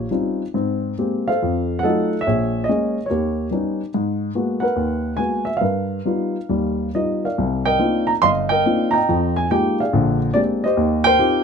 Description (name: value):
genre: solo jazz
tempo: 141 BPM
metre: 4/4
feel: swing 66% on 8ths, rubato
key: C minor from 7.4 s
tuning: A4 = 436 Hz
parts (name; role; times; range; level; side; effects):
- dark baby grand piano; solo; 0.0-11.4 s; G1 to C6; -18 LUFS; equal; none
room: light reverb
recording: close, detailed microphones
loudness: -18 LUFS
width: side -6 dB against mid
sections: 0.0-7.4 A section; 7.4-11.4 B section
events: none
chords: 0.0 D#13; 0.5 G#maj9; 1.4 F7b9; 2.3 A#m7b5; 3.1 D#7b13; 3.9 G#m9; 5.6 G7alt; 7.4 Cm11; 9.1 Fm11; 9.9 Bb13; 10.8 Eb69